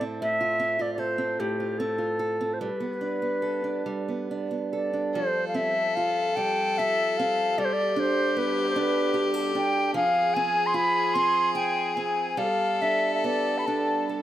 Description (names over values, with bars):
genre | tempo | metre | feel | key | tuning
celtic folk, Celtic slow air | 46-51 BPM (dotted quarters) | 6/8 | rubato | unclear | A4 = 440 Hz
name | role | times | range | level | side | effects
mellow wooden flute | melody | 0.0-14.2 s | G4 to C6 | -26 LUFS | equal | analog delay
fingerpicked steel-string acoustic guitar | accompaniment | 0.0-14.2 s | A2 to A4 | -30 LUFS | right 4 dB | none
warm fiddle | second line | 5.1-14.2 s | G4 to A4 | -29 LUFS | left 4 dB | none
muted French horn section | sustained chords | 5.1-14.2 s | B2 to A4 | -35 LUFS | equal | none
room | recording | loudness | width
moderate spring reverb, RT60 1.6 s, studio ambience | none | -23 LUFS | side -12 dB against mid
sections
0.0-5.1 A section; 5.1-14.2 B section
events
none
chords
0.2 F/A; 2.6 Gadd9; 5.1 Fadd9; 7.6 Gadd9; 9.9 Fm; 12.4 Gadd9